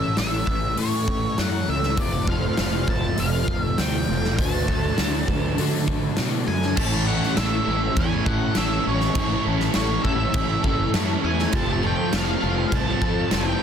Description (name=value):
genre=rock, shoegaze and dream pop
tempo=100 BPM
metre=4/4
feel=straight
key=A major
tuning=A4 = 440 Hz
part: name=octave-fuzz lead guitar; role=melody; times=0.0-13.6 s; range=C#5 to A5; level=-28 LUFS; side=equal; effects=distortion, tape echo
part: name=picked plugged-in twelve-string acoustic guitar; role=arpeggios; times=0.0-6.8, 11.5-13.6 s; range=F4 to C#5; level=-36 LUFS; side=right 11 dB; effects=ensemble chorus, tape echo
part: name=overdriven semi-hollow guitar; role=riff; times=0.0-13.6 s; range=A2 to A4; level=-28 LUFS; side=left 12 dB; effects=ensemble chorus
part: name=fuzz fingered electric bass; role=bass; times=0.0-13.5 s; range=F1 to D3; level=-26 LUFS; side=equal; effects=overdrive
part: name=huge arena drum kit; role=drums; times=0.2-13.5 s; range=crash cymbal, hi-hat, kick drum, snare drum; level=-25 LUFS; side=equal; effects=none
part: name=crunchy overdriven guitar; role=riff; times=2.0-13.6 s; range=F2 to F#4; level=-28 LUFS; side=right 13 dB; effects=reverse reverb
room=small room ambience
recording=dense, heavily limited modern master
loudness=-20 LUFS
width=side -8 dB against mid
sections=0.0-6.8 A section; 6.8-13.6 B section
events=none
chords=0.0 A; 2.0 F; 4.4 D; 6.8 A; 11.5 F